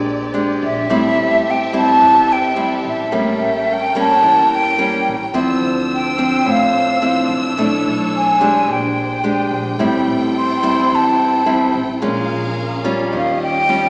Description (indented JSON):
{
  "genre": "bossa nova",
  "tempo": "108 BPM",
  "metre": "4/4",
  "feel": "straight",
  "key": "unclear",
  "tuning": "A4 = 438 Hz",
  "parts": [
    { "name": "nylon-string guitar", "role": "accompaniment", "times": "0.0-13.9 s", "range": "A2 to G4", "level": "-18 LUFS", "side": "equal", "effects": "none" },
    { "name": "warm symphonic string section", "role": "sustained chords", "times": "0.0-13.9 s", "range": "C4 to E6", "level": "-23 LUFS", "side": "equal", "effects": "none" },
    { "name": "upright bass", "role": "bass", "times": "0.0-13.9 s", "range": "A1 to E2", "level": "-29 LUFS", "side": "equal", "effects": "none" },
    { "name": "mellow hollow jazz flute", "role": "melody", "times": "0.6-13.9 s", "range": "E5 to C6", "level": "-15 LUFS", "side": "equal", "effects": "none" }
  ],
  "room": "wet recital hall reverb, RT60 1.4 s",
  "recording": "recorded in a church or concert hall, small speaker sound",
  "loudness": "-13 LUFS",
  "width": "side -37 dB against mid",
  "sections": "0.0-13.9 A section",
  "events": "flute solo 0.0-13.9",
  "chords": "0.0 Bb13; 0.9 Am7; 3.1 A7b9; 5.3 Dm9; 7.6 Bm11; 8.7 Bb13; 9.8 Am7; 12.0 Bbm7; 13.1 Eb9"
}